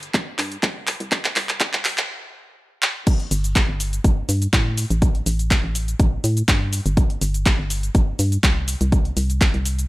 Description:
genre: piano house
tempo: 123 BPM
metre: 4/4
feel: straight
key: unclear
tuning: A4 = 440 Hz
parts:
  - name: organ-like FM bass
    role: bass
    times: 0.0-9.9 s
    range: G1 to A2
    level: -22 LUFS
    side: equal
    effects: sidechain pumping
  - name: punchy analog drum machine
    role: drums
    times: 0.0-9.9 s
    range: cabasa, crash cymbal, handclaps, hi-hat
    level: -23 LUFS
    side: equal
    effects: none
  - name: electronic kick drum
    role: drums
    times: 0.1-9.5 s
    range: none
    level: -19 LUFS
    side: equal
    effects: none
room: digital ambience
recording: high-pass filter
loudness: -18 LUFS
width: side -19 dB against mid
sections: 0.0-3.1 A section; 3.1-9.9 B section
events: build-up 0.0-3.1; drum fill 0.0-2.1, 2.8; stop 2.1-3.1; drop 3.1-9.9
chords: none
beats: 0.14 0.63 | 1.12 1.61 2.09 2.58 | 3.07 3.56 4.04 4.53 | 5.02 5.51 6.00 6.48 | 6.97 7.46 7.95 8.44 | 8.92 9.41

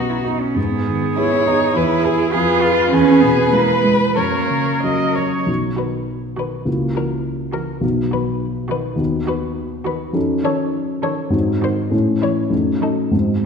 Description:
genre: quick classical-period movement for piano quartet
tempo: 90-105 BPM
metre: 2/4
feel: rubato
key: B major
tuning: A4 = 440 Hz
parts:
  - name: warm violin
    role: melody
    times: 0.0-13.1 s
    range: F4 to C#5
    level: -23 LUFS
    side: left 5 dB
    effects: none
  - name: dark baby grand piano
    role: accompaniment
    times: 0.0-13.5 s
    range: B1 to B4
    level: -19 LUFS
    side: left 1 dB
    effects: none
  - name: rich cello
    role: second line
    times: 0.1-13.0 s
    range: D#3 to Ab4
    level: -21 LUFS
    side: right 5 dB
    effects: none
  - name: warm viola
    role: accompaniment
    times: 0.2-13.1 s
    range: D#4 to D#5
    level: -24 LUFS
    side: right 3 dB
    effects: none
room: wet scoring stage reverb, RT60 2.0 s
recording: minimal, uncompressed stereo recording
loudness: -16 LUFS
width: side -6 dB against mid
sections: 0.0-5.5 A section; 5.5-13.5 B section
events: none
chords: 0.0 B; 0.6 G#m; 1.8 E; 2.3 Fdim; 2.9 E; 4.2 F#; 5.5 B; 6.7 F#7/C#; 7.8 B; 9.0 B/D#; 10.2 D#m7b5/F#; 11.3 G#7; 11.9 A; 12.5 D#dim/F#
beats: | 0.57 1.18 | 1.76 2.34 | 2.93 3.54 | 4.17 4.83 | 5.48 6.08 | 6.67 7.24 | 7.83 8.41 | 8.99 9.57 | 10.15 10.74 | 11.33 11.93 | 12.52 13.13

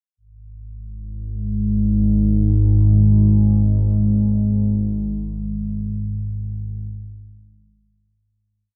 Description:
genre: ambient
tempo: free time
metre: none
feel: none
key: unclear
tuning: A4 = 440 Hz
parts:
  - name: analog drone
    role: solo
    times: 1.1-8.7 s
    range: G#1 to G#2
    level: -19 LUFS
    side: equal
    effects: chorus, delay
room: wet cathedral reverb, RT60 4.9 s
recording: dark, warm production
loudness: -19 LUFS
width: mono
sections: 0.2-8.6 A section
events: fade-out 4.4-8.6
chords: none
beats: free time

